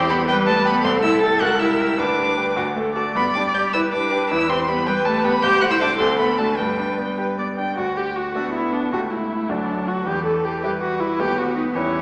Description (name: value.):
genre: quick classical-period movement for piano quartet.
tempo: 105 BPM (dotted quarters).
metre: 6/8.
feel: rubato.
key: G major, D major from 7.8 s.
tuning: A4 = 440 Hz.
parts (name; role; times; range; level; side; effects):
rich cello; second line; 0.0-12.0 s; E3 to A4; -26 LUFS; equal; none.
bright baby grand piano; accompaniment; 0.0-12.0 s; C2 to D5; -28 LUFS; equal; none.
warm viola; accompaniment; 0.0-12.0 s; D4 to G5; -25 LUFS; equal; none.
warm violin; melody; 0.1-12.0 s; D4 to A6; -27 LUFS; equal; none.
room: wet scoring stage reverb, RT60 1.7 s.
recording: none.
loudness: -20 LUFS.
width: mono.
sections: 0.0-7.8 A section; 7.8-12.0 B section.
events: none.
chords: 0.0 Em; 0.8 Am7/C; 1.4 C#dim7; 2.0 G/D; 2.6 D; 3.2 G; 4.3 Em; 5.4 Am/C; 6.0 D; 6.6 G; 7.8 D5; 8.9 A7/C#; 9.5 D; 10.1 Em; 11.2 B7/D#.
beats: 0.28 | 0.85 1.41 | 1.99 2.57 | 3.16 3.73 | 4.30 4.87 | 5.43 5.99 | 6.58 7.18 | 7.78 8.35 | 8.93 9.49 | 10.06 10.63 | 11.18 11.74.